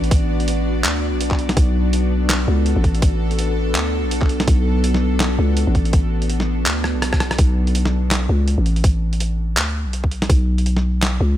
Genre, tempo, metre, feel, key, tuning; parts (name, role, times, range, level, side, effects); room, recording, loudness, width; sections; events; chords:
half-time drum and bass; 165 BPM; 4/4; swing 58% on 16ths, half-time; B minor; A4 = 440 Hz
bowed-like drone; sustained chords; 0.0-7.4 s; B3 to D5; -24 LUFS; equal; built-in reverb, sidechain pumping
growling 808-style bass; bass; 0.0-11.4 s; A1 to D2; -19 LUFS; equal
boom bap sampler-style drum kit; drums; 0.0-11.1 s; handclaps, hi-hat, rim click, snare drum; -23 LUFS; equal
electronic kick drum; drums; 0.1-10.4 s; -16 LUFS; equal
digital ambience; -16 LUFS; side -12 dB against mid
0.0-7.4 A section; 7.4-11.4 A section
drop 0.0-7.4, 7.4-11.4; drum fill 6.8-7.4
0.0 Bm; 7.4 N.C.